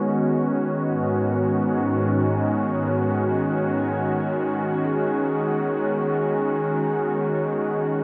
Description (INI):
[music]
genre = ambient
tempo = free time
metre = none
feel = none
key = B major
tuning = A4 = 440 Hz
[part]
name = warm analog pad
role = sustained chords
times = 0.0-8.0 s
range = G#2 to F#4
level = -24 LUFS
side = equal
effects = subtle chorus
[part]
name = vibraphone with medium mallets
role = arpeggios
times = 0.0-8.0 s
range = G#3 to D#6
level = -31 LUFS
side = equal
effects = delay
[part]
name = analog drone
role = drone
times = 0.0-8.0 s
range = B3 to F#4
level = -33 LUFS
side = equal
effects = none
[sound]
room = wet scoring stage reverb, RT60 2.0 s, small room reverb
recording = none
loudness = -23 LUFS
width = mono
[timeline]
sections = 0.0-8.0 A section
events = fade-in on vibraphone 0.0-8.0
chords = 0.0 G#m; 0.8 B69/G#; 4.3 B